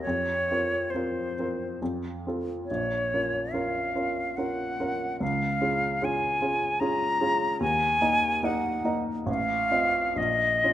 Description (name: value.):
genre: classical, romantic duo for flute and grand piano.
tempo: 63-77 BPM.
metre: 3/4.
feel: rubato.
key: Bb minor.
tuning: A4 = 440 Hz.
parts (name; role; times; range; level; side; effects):
bright silver concert flute; melody; 0.0-10.7 s; C5 to Bb5; -26 LUFS; left 1 dB; none.
warm baby grand piano; accompaniment; 0.0-10.7 s; A1 to Eb5; -29 LUFS; equal; none.
room: moderate recital hall reverb, RT60 1.7 s.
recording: none.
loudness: -24 LUFS.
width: side -12 dB against mid.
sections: 0.0-10.7 A section.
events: none.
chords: 0.0 Fsus4; 1.8 F; 2.7 Bbm; 5.2 Db; 7.6 Eb5; 9.3 F7/A; 10.2 Bbm.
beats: | 0.04 0.91 1.80 | 2.69 3.54 4.38 | 5.21 6.03 6.81 | 7.61 8.43 9.28 | 10.17.